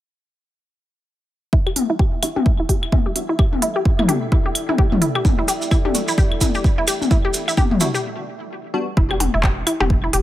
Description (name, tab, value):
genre	minimal techno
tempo	129 BPM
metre	4/4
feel	swing 59% on 16ths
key	E minor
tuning	A4 = 440 Hz
part	resonant blip pluck	riff	1.5-10.2 s	E4 to G4	-24 LUFS	equal	chorus, sidechain pumping, digital delay
part	electronic kick drum	drums	1.5-10.0 s	none	-17 LUFS	equal	studio reverb
part	deep dark ambient pad	texture	3.2-8.0 s	E4 to G5	-33 LUFS	right 2 dB	chorus, built-in reverb, sidechain pumping
part	pulsing gated texture	texture	1.5-8.0 s	E4 to E5	-32 LUFS	right 1 dB	chorus, built-in reverb, sidechain pumping
part	electronic claves, toms and percussion blips	percussion	1.7-9.9 s	none	-23 LUFS	left 3 dB	studio reverb, tape echo
part	minimal click drum kit	drums	1.8-10.2 s	handclaps, hi-hat	-23 LUFS	right 2 dB	overdrive, studio reverb
part	wavetable chord stab	stabs	2.2-8.9 s	G3 to F#4	-28 LUFS	left 1 dB	tape echo
part	shekere	percussion	5.3-8.0 s	none	-27 LUFS	right 3 dB	none
part	saturated sub bass	bass	9.0-10.2 s	E1	-22 LUFS	equal	sidechain pumping
room	little or no reverb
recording	none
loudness	-16 LUFS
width	side -14 dB against mid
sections	1.5-9.0 A section; 9.0-10.2 B section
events	fade-in on ambient pad 1.5-9.0; filter sweep on synth pluck 1.5-9.0; filter sweep on synth stab 1.5-9.0; break 8.0-9.0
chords	1.5 Em7; 9.0 Em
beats	| 1.53 1.99 2.46 2.92 | 3.39 3.85 4.32 4.78 | 5.25 5.71 6.18 6.64 | 7.11 7.58 8.04 8.51 | 8.97 9.44 9.90